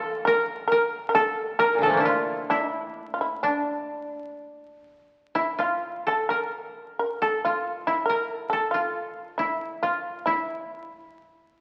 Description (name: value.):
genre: japanese traditional, Japanese chamber music.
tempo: 60-71 BPM.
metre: 4/4.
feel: rubato.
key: unclear.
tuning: A4 = 438 Hz.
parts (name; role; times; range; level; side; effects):
koto; melody; 0.0-11.6 s; Bb2 to D5; -28 LUFS; equal; none.
shamisen; second line; 0.0-11.6 s; D4 to Bb4; -29 LUFS; equal; none.
koto; accompaniment; 0.0-0.7 s; E3; -58 LUFS; equal; none.
room: wet recital hall reverb, RT60 1.9 s.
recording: very old 78 rpm record, vinyl crackle.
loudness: -26 LUFS.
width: mono.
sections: 0.0-5.3 A section; 5.3-11.6 B section.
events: none.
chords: none.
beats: 0.69 | 1.58 2.48 3.41 4.38 | 5.35 6.28 7.18 8.06 | 8.94 9.82 10.68 11.54.